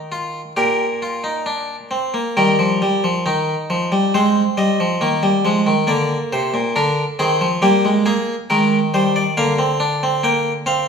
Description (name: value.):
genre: classical, baroque-style 3-part fugue for harpsichord.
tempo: 68 BPM.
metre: 4/4.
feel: straight.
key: Eb major.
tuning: A4 = 440 Hz.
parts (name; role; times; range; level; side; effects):
harpsichord; solo; 0.0-10.9 s; Bb2 to G5; -16 LUFS; equal; none.
room: wet stone room reverb, RT60 1.0 s.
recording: heard from further back in the room.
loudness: -16 LUFS.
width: side -6 dB against mid.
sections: 0.0-2.4 A section; 2.4-10.9 B section.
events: none.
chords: 0.0 Bbsus4/Eb; 0.6 Bb; 2.4 Eb; 4.1 Ab; 5.9 Bb7; 7.6 Eb/G; 9.4 Bb/D.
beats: 0.57 1.47 | 2.37 3.26 4.14 5.02 | 5.90 6.77 7.64 8.52 | 9.39 10.25.